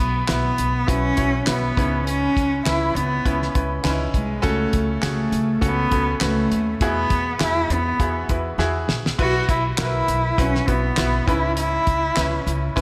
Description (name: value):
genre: piano-driven pop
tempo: 101 BPM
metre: 4/4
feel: swing 56% on 16ths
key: unclear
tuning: A4 = 442 Hz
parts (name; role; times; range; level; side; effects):
- warm cello; melody; 0.0-12.7 s; G#3 to F#4; -25 LUFS; equal; none
- bright upright piano; accompaniment; 0.0-12.8 s; G#2 to C#5; -28 LUFS; equal; slapback echo
- upright bass; bass; 0.0-12.8 s; A#1 to E2; -28 LUFS; equal; none
- damped 70s drum kit; drums; 0.3-12.8 s; crash cymbal, handclaps, hi-hat, kick drum, snare drum; -26 LUFS; equal; none
room: moderate scoring stage reverb, RT60 1.9 s, small room ambience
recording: big arena sound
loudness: -21 LUFS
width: mono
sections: 0.0-12.8 A section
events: drum fill 8.6-9.2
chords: 0.0 Bsus4; 1.8 C#m7; 4.4 A6/C#; 6.8 Eadd9; 9.2 Bsus4; 11.3 C#m7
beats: 0.29 0.88 1.48 | 2.07 2.66 3.26 3.85 | 4.44 5.04 5.63 6.22 | 6.82 7.41 8.01 8.60 | 9.19 9.79 10.38 10.98 | 11.57 12.17 12.76